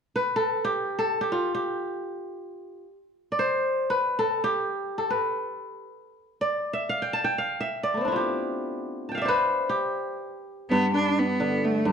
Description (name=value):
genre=west african traditional, West African string and xylophone music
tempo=free time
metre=none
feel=none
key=G mixolydian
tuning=A4 = 442 Hz
part: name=kora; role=arpeggios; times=0.2-11.9 s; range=G2 to A5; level=-25 LUFS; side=equal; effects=none
part: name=clear cello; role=melody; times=10.7-11.9 s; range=G3 to D4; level=-23 LUFS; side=right 1 dB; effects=none
room=moderate recital hall reverb, RT60 1.3 s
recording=dark, warm production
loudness=-24 LUFS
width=side -6 dB against mid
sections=0.0-10.7 A section; 10.7-11.9 B section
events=kora solo 0.0-10.7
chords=0.0 G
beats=free time